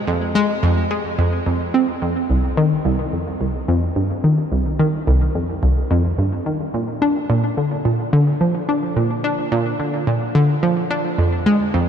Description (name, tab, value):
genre	ambient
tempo	108 BPM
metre	4/4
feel	straight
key	F dorian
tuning	A4 = 439 Hz
part	analog pluck	solo	0.1-11.9 s	C2 to D4	-17 LUFS	equal	chorus, analog delay
room	moderate huge ambient reverb, RT60 8.3 s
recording	in a vast, echoing space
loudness	-17 LUFS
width	side -8 dB against mid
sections	0.0-11.9 A section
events	none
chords	none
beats	| 0.07 0.63 1.19 1.74 | 2.30 2.85 3.41 3.96 | 4.52 5.07 5.63 6.18 | 6.74 7.30 7.85 8.41 | 8.96 9.52 10.07 10.63 | 11.19 11.74